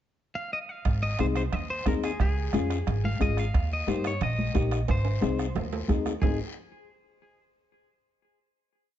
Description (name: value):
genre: latin, cumbia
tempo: 179 BPM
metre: 4/4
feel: straight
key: Ab major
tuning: A4 = 438 Hz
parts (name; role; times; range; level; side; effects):
- clean electric guitar; melody; 0.4-6.4 s; Ab4 to F5; -34 LUFS; equal; spring reverb, tape echo
- upright bass; bass; 0.9-6.4 s; Ab1 to G2; -29 LUFS; equal; none
- bombo; percussion; 0.9-6.3 s; none; -30 LUFS; right 2 dB; none
- guiro; percussion; 0.9-6.3 s; none; -46 LUFS; left 7 dB; none
- timbales; percussion; 0.9-6.3 s; none; -38 LUFS; right 8 dB; none
- nylon-string guitar; accompaniment; 1.2-6.4 s; Bb3 to Ab4; -30 LUFS; left 7 dB; none
- congas; percussion; 1.2-6.3 s; none; -34 LUFS; right 1 dB; none
room: light reverb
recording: dark, warm production, nothing above 7.7 kHz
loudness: -25 LUFS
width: side -11 dB against mid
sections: 0.0-0.9 pickup bar; 0.9-6.2 A section; 6.2-7.6 final chord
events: drum fill 4.9-6.2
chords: 0.0 N.C.; 0.9 Ab; 2.2 Db; 3.5 Eb; 4.9 Ab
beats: 0.18 0.52 | 0.85 1.19 1.53 1.86 | 2.20 2.54 2.87 3.21 | 3.55 3.88 4.22 4.55 | 4.89 5.22 5.56 5.89 | 6.23